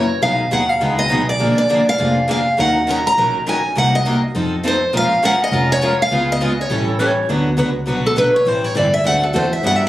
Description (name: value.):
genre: acoustic string swing (jazz manouche).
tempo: 204 BPM.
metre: 4/4.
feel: swing 59% on 8ths.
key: unclear.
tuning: A4 = 440 Hz.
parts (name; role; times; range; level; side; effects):
picked steel-string acoustic guitar; melody; 0.0-9.9 s; A4 to A#5; -16 LUFS; equal; none.
picked steel-string acoustic guitar; accompaniment; 0.0-9.8 s; B2 to B4; -21 LUFS; left 2 dB; none.
picked steel-string acoustic guitar; accompaniment; 0.0-9.8 s; B2 to B4; -24 LUFS; right 2 dB; none.
dark double bass; bass; 0.0-9.9 s; E#1 to G2; -22 LUFS; equal; none.
growling clarinet; second line; 6.9-7.3 s; A4 to C#5; -19 LUFS; equal; none.
room: moderate small room reverb, RT60 0.5 s.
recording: recorded on a phone in the room, club reverb, compression.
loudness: -14 LUFS.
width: side -14 dB against mid.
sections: 0.0-7.3 A section; 7.3-9.9 B section.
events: steel-string acoustic guitar solo 7.3-9.9.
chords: 0.2 B6; 1.4 A#7; 2.6 D#m7; 3.8 Cm7b5; 4.3 F7; 4.9 A#m7; 6.1 C#7; 6.7 A7; 7.3 D6; 8.5 Am7; 9.1 D7.